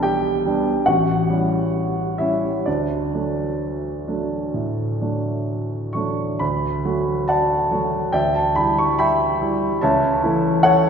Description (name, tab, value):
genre	classical, romantic character piece for solo piano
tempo	63-74 BPM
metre	4/4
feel	rubato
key	D major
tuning	A4 = 440 Hz
part	warm baby grand piano	solo	0.0-10.9 s	A1 to C#6	-18 LUFS	equal	none
room	wet church reverb, RT60 2.7 s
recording	recorded in a church or concert hall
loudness	-18 LUFS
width	side -6 dB against mid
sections	0.0-6.4 A section; 6.4-10.9 A section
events	none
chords	0.0 G/B; 0.9 A7; 2.7 D; 8.1 Em7/D; 9.8 A/C#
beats	0.03 0.87 1.73 | 2.66 3.60 4.54 5.48 | 6.41 7.30 8.15 9.00 | 9.82 10.64